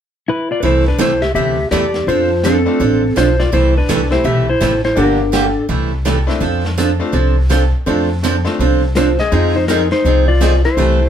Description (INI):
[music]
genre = country, western swing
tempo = 166 BPM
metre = 4/4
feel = swing 63% on 8ths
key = unclear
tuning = A4 = 440 Hz
[part]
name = clean lap steel guitar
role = melody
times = 0.3-5.7, 9.0-11.1 s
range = C4 to E5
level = -15 LUFS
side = left 2 dB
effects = none
[part]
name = picked acoustic archtop guitar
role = accompaniment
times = 0.6-11.0 s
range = C3 to A4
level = -18 LUFS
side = right 5 dB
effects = none
[part]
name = upright bass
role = bass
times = 0.6-11.1 s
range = G1 to F2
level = -16 LUFS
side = equal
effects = none
[part]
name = vintage brush drum kit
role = drums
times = 0.6-11.1 s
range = brushed snare drum, hi-hat, snare drum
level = -26 LUFS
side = left 1 dB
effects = none
[part]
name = tack piano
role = accompaniment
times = 2.7-11.1 s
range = Ab3 to G4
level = -21 LUFS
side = left 4 dB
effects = none
[sound]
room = light reverb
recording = band playing live in one room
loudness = -12 LUFS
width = side -9 dB against mid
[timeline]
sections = 0.6-11.1 A section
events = none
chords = 0.0 E5; 0.6 C6; 2.1 F6; 3.5 C6; 5.0 Gm7; 5.7 C6; 6.4 F6; 9.3 Fm7